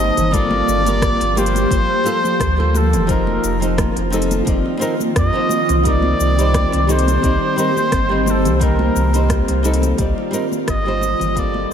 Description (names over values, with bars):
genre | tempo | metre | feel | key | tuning
sunset chillout | 87 BPM | 4/4 | swing 54% on 16ths | C dorian | A4 = 441 Hz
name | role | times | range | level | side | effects
trumpet with cup mute | melody | 0.0-11.7 s | A4 to Eb5 | -21 LUFS | equal | tape echo
flamenco guitar | accompaniment | 0.0-11.7 s | F3 to D5 | -22 LUFS | equal | auto-pan, tape echo
ethereal airy pad | sustained chords | 0.0-11.7 s | Eb3 to A5 | -22 LUFS | equal | ensemble chorus, built-in reverb
warm sub bass | bass | 0.0-11.7 s | F1 to F2 | -19 LUFS | equal | none
deep house drum kit | drums | 0.2-11.5 s | cabasa, hi-hat, rim click | -27 LUFS | left 1 dB | none
congas and bongos | percussion | 0.2-11.7 s | none | -27 LUFS | left 2 dB | none
electronic kick drum | drums | 0.3-11.5 s | none | -21 LUFS | equal | none
room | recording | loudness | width
wet lush hall reverb, RT60 2.7 s | dreamy mix soaked in reverb | -14 LUFS | side -8 dB against mid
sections
0.0-11.7 A section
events
fade-out 9.5-11.7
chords
0.3 Gm9; 3.1 F7sus4; 5.8 Cm7